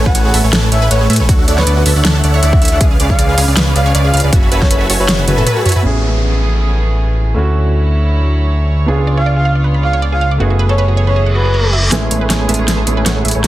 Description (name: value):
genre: future bass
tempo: 158 BPM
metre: 4/4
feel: swing 54% on 16ths, half-time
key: A major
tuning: A4 = 440 Hz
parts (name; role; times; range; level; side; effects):
- wide unison pluck; arpeggios; 0.0-5.8, 8.9-13.5 s; F#4 to B5; -22 LUFS; right 4 dB; sidechain pumping, dub echo
- dense compressed supersaw; riff; 0.0-5.8, 11.9-13.5 s; A3 to C#6; -18 LUFS; right 1 dB; sidechain pumping, low-pass filter
- fat analog bass; bass; 0.0-13.5 s; F#1 to A2; -13 LUFS; equal; sidechain pumping
- breathy flute-like synth lead; melody; 0.1-5.7, 9.2-11.7 s; B4 to F#5; -20 LUFS; equal; chorus, sidechain pumping, dub echo
- big-room dance drum kit; drums; 0.1-5.8, 11.9-13.5 s; hi-hat, snare drum, toms; -16 LUFS; equal; overdrive
- electronic kick drum; drums; 0.1-4.7 s; none; -12 LUFS; equal; overdrive
- warm grand piano; accompaniment; 5.8-13.5 s; F#3 to G#4; -21 LUFS; right 2 dB; sidechain pumping, dub echo
- warm studio string section; sustained chords; 5.8-13.5 s; C#3 to C#5; -25 LUFS; right 2 dB; sidechain pumping, low-pass filter
- downlifter, reverse cymbal and riser; sound effects; 5.8-13.5 s; none; -22 LUFS; equal; none
room: light reverb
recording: dense, heavily limited modern master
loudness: -10 LUFS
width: side -15 dB against mid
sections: 0.0-5.8 A section; 5.8-11.9 B section; 11.9-13.5 C section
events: drop 0.0-5.8; drum fill 5.1-5.8, 11.9-13.5; reverse cymbal 11.3-11.9; build-up 11.9-13.5; filter sweep on supersaw synth 11.9-13.5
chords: 0.0 Amaj9; 1.3 Dmaj9; 2.8 C#7b9; 4.3 F#m11; 5.8 Amaj9; 7.4 Dmaj9; 8.9 C#7b9; 10.4 F#m11; 11.9 Amaj9